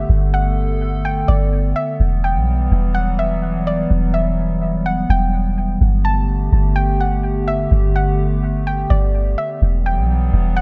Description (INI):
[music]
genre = hip hop, atmospheric cloud-rap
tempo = 126 BPM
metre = 4/4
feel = half-time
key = G major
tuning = A4 = 440 Hz
[part]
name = soft round pluck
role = melody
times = 0.0-10.6 s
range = D5 to A5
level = -26 LUFS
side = equal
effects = chorus, low-pass filter, analog delay
[part]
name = warbly tape-like pad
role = sustained chords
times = 0.0-10.6 s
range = D3 to A4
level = -24 LUFS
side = equal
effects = chorus, built-in reverb
[part]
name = soft 808-style bass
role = bass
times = 0.0-10.6 s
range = E1 to B1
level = -20 LUFS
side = equal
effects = none
[sound]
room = little or no reverb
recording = echo-heavy mix, nothing above 10.9 kHz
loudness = -18 LUFS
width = mono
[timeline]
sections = 0.0-10.6 A section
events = none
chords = 0.0 Gadd9; 2.0 Emadd9; 5.8 Gadd9; 9.6 Emadd9